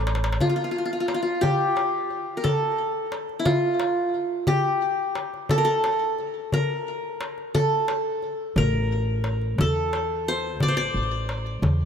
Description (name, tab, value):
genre	Arabic maqam ensemble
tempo	59 BPM (dotted quarters)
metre	6/8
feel	straight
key	A maqam kurd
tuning	A4 = 440 Hz
part	qanun	melody	0.0-11.9 s	E4 to D5	-24 LUFS	equal	ping-pong delay
part	upright bass	bass	0.0-0.4, 8.6-11.9 s	A1 to E2	-26 LUFS	equal	none
part	darbuka	percussion	0.1-11.8 s	none	-27 LUFS	left 1 dB	none
room	wet plate reverb, RT60 3.4 s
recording	dreamy mix soaked in reverb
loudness	-22 LUFS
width	side -7 dB against mid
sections	0.4-11.9 A section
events	drum fill 0.0-0.4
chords	none